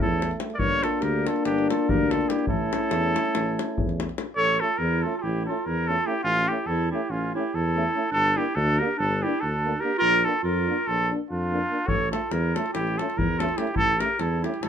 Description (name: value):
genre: balkan folk, Balkan brass band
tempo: 287 BPM (eighths)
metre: 9/8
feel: straight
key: A phrygian dominant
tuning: A4 = 444 Hz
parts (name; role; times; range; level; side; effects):
- cornet with straight mute; melody; 0.0-14.7 s; F4 to D5; -25 LUFS; equal; none
- warm clarinet; second line; 0.0-14.7 s; C#4 to Bb4; -30 LUFS; right 4 dB; none
- mellow French horn; accompaniment; 0.0-14.5 s; C#4 to D4; -30 LUFS; left 7 dB; none
- warm euphonium; accompaniment; 0.0-14.5 s; A3 to Bb3; -33 LUFS; right 6 dB; none
- mellow tuba; bass; 0.0-14.7 s; G1 to F2; -28 LUFS; equal; none
- davul; percussion; 0.2-4.3, 11.9-14.7 s; none; -29 LUFS; left 3 dB; none
room: moderate studio reverb, RT60 0.5 s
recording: minimal, uncompressed stereo recording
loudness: -22 LUFS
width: side -8 dB against mid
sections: 0.0-4.4 A section; 4.4-14.7 A section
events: none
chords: 0.0 A; 0.6 Gm; 2.5 A; 8.1 Gm; 10.0 Bb; 11.9 A